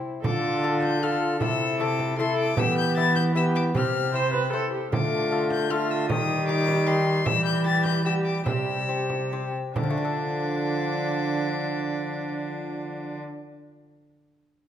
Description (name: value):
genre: classical, renaissance-style consort dance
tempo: 135-155 BPM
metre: 3/4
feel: straight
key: D dorian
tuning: A4 = 441 Hz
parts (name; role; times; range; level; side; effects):
- rich violin; melody; 0.0-13.2 s; C6 to A6; -30 LUFS; left 6 dB; none
- warm viola; second line; 0.0-13.2 s; D4 to C5; -31 LUFS; right 4 dB; none
- clear trombone; accompaniment; 0.0-13.2 s; F3 to F4; -29 LUFS; left 3 dB; none
- lute; accompaniment; 0.0-13.6 s; C3 to C5; -32 LUFS; left 5 dB; none
- warm cello; bass; 0.0-13.2 s; C3 to E3; -28 LUFS; right 2 dB; none
- frame drum; percussion; 0.2-10.0 s; none; -31 LUFS; right 4 dB; none
room: wet recital hall reverb, RT60 1.7 s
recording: minimal, uncompressed stereo recording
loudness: -22 LUFS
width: side -10 dB against mid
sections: 0.2-9.8 A section; 9.8-12.4 B section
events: slowing down 6.7-9.8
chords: 0.2 Dm; 1.4 Am/C; 2.6 Em; 3.7 C; 4.9 Dm; 6.1 Eb; 7.3 Em; 8.5 C; 9.8 Dm